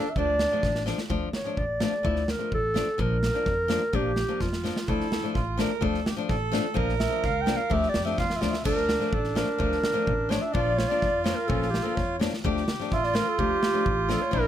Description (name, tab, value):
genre	klezmer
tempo	127 BPM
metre	2/4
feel	straight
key	D harmonic minor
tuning	A4 = 438 Hz
part	dark clarinet	melody	0.0-14.5 s	E4 to G5	-28 LUFS	right 1 dB	none
part	accordion	second line	0.0-0.8, 4.9-14.5 s	D4 to Bb4	-30 LUFS	right 4 dB	none
part	flamenco guitar	accompaniment	0.0-14.5 s	F3 to E4	-31 LUFS	left 7 dB	none
part	upright bass	bass	0.2-14.5 s	A1 to F2	-31 LUFS	equal	none
part	big rock drum kit	drums	0.2-14.4 s	crash cymbal, kick drum, snare drum	-30 LUFS	equal	none
room	light reverb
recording	close, detailed microphones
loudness	-24 LUFS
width	side -11 dB against mid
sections	0.0-1.1 A section; 1.1-8.7 B section; 8.7-14.5 C section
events	drum fill 0.6-1.1, 4.4-4.9, 8.2-8.7; clarinet solo 1.1-8.7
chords	0.2 Dm; 3.0 Bb; 4.9 Dm; 6.8 Bb; 7.7 Dm; 10.5 Bb; 12.4 Dm